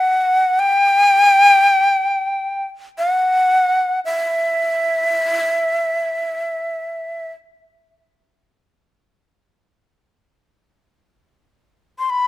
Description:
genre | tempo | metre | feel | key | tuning
japanese traditional, Japanese chamber music | free time | none | none | E hirajoshi | A4 = 440 Hz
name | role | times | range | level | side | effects
breathy bright shakuhachi | solo | 0.0-12.3 s | E5 to C6 | -14 LUFS | left 1 dB | none
room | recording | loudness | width
light reverb | close, detailed microphones | -14 LUFS | side -15 dB against mid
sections
0.0-10.4 A section; 10.4-12.3 A section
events
none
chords
none

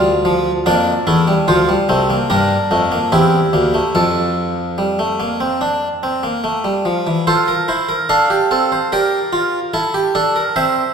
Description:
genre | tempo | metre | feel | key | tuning
classical, baroque-style 4-part fugue for harpsichord | 73 BPM | 4/4 | straight | F major | A4 = 441 Hz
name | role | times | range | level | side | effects
harpsichord | solo | 0.0-10.9 s | C2 to F5 | -14 LUFS | equal | none
room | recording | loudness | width
wet scoring stage reverb, RT60 1.7 s | recorded in a church or concert hall | -14 LUFS | side -6 dB against mid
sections
0.0-7.3 A section; 7.3-10.9 B section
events
none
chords
0.0 Dm; 0.7 Bb; 2.3 Gm; 3.1 C7/E; 3.9 F; 8.9 Gm7

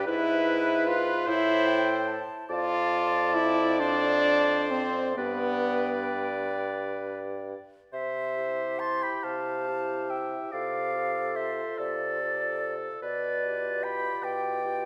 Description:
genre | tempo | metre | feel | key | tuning
classical, slow romantic movement for wind quintet | 42-50 BPM (dotted quarters) | 6/8 | rubato | C major | A4 = 439 Hz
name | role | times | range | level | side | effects
concert flute | melody | 0.0-14.9 s | D5 to C6 | -35 LUFS | equal | none
clear oboe | second line | 0.0-14.9 s | A4 to A5 | -36 LUFS | equal | none
clear French horn | accompaniment | 0.0-14.9 s | B3 to F4 | -32 LUFS | equal | none
warm clarinet | accompaniment | 0.0-14.9 s | G4 to D5 | -36 LUFS | equal | none
mellow bassoon | bass | 0.0-14.9 s | F2 to C3 | -34 LUFS | equal | none
room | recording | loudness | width
wet recital hall reverb, RT60 1.7 s | none | -28 LUFS | mono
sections
0.0-7.9 A section; 7.9-14.9 B section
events
none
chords
0.1 E/G#; 1.3 Am; 2.5 Dm/F; 5.2 G; 7.9 C; 10.5 Dm7/C; 13.0 G7/B

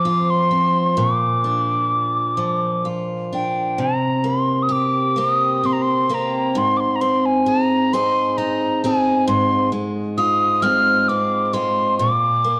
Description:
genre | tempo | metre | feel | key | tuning
celtic folk, Celtic slow air | 44 BPM (dotted quarters) | 6/8 | rubato | C minor | A4 = 440 Hz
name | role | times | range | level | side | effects
mellow hollow wooden whistle | melody | 0.0-12.6 s | G5 to F6 | -21 LUFS | equal | none
picked steel-string acoustic guitar | accompaniment | 0.0-12.6 s | F2 to Ab4 | -23 LUFS | equal | none
room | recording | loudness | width
moderate scoring stage reverb, RT60 1.6 s | worn, warbling old tape, cassette tape, warbly pitch drift | -19 LUFS | mono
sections
0.0-3.8 A section; 3.8-12.6 B section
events
none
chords
0.0 F5; 1.0 Bb; 3.8 C5; 6.6 Ab; 9.3 Fm/Ab; 12.0 Bb

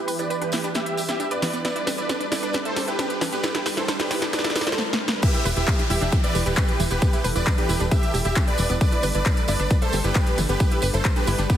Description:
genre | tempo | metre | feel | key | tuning
uplifting trance | 134 BPM | 4/4 | straight | E minor | A4 = 444 Hz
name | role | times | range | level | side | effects
supersaw chords | melody | 0.0-11.6 s | B3 to E5 | -26 LUFS | right 1 dB | sidechain pumping, low-pass filter, ping-pong delay
analog string pad | sustained chords | 0.0-11.6 s | E3 to B4 | -32 LUFS | right 2 dB | ensemble chorus, sidechain pumping
riser and downlifter | sound effects | 1.0-8.8 s | none | -36 LUFS | equal | none
wide unison pluck | arpeggios | 0.1-11.5 s | E3 to E5 | -31 LUFS | right 2 dB | sidechain pumping, ping-pong delay
tight sequencer bass | bass | 0.1-11.5 s | E1 to G2 | -25 LUFS | equal | sidechain pumping, high-pass filter
big-room dance drum kit | drums | 0.1-11.6 s | crash cymbal, handclaps, hi-hat, snare drum | -28 LUFS | left 1 dB | sidechain pumping on hats, sidechain pumping on cymbals
tambourine | percussion | 0.1-11.6 s | none | -36 LUFS | right 2 dB | none
electronic kick drum | drums | 5.2-11.6 s | none | -21 LUFS | equal | none
room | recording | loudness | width
light reverb, digital ambience | heavily compressed radio sound | -20 LUFS | side -10 dB against mid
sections
0.0-5.2 A section; 5.2-11.6 B section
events
build-up 0.0-5.2; drum fill 0.0-4.8, 4.8-5.2; filter sweep on supersaw synth 0.0-5.2; drop 5.2-11.6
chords
0.0 Em; 1.6 Gadd9; 5.2 Em; 8.8 Gadd9

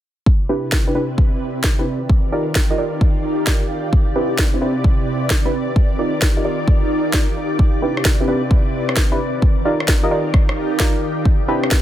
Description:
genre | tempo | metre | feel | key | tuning
UK garage, two-step garage | 131 BPM | 4/4 | swing 66% on 16ths | unclear | A4 = 440 Hz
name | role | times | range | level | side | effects
soft string machine | sustained chords | 0.4-11.8 s | C3 to D5 | -27 LUFS | equal | ensemble chorus, sidechain pumping
electronic kick drum | drums | 0.3-11.8 s | none | -16 LUFS | equal | none
ethereal airy pad | texture | 1.1-11.8 s | C4 to F5 | -24 LUFS | equal | ensemble chorus, built-in reverb, sidechain pumping
deep mellow chord stab | stabs | 0.5-11.8 s | C4 to Eb5 | -22 LUFS | right 1 dB | chorus, dub echo
electronic snare drum and rim click | drums | 0.7-11.8 s | none | -20 LUFS | equal | none
room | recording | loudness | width
light reverb | dense, heavily limited modern master | -15 LUFS | side -12 dB against mid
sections
0.3-11.8 A section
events
filter sweep on synth stab 0.3-11.8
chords
0.3 Cmaj9; 1.9 Ebmaj9; 3.9 Cmaj9; 5.5 Ebmaj9; 7.6 Cmaj9; 9.2 Ebmaj9; 11.3 Cmaj9

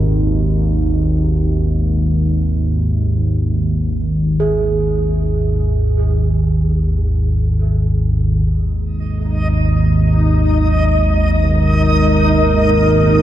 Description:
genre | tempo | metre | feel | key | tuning
dark ambient drone | free time | none | none | G# minor | A4 = 442 Hz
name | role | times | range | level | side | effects
gamelan-type bossed gongs | arpeggios | 0.0-13.2 s | A#2 to G#4 | -26 LUFS | right 3 dB | diffuse ambient delay
analog drone | drone | 0.0-13.2 s | G#1 to D#2 | -14 LUFS | equal | lush chorus
dark analog pad | sustained chords | 8.4-13.2 s | G#3 to A#4 | -18 LUFS | right 2 dB | wide subtle chorus
backwards swelling texture | texture | 9.3-13.2 s | D#4 to D#5 | -19 LUFS | left 1 dB | built-in reverb
room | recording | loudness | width
moderate huge ambient reverb, RT60 8.8 s | dark, warm production | -13 LUFS | side -12 dB against mid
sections
0.0-8.4 A section; 8.4-13.2 B section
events
none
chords
0.0 G#m9

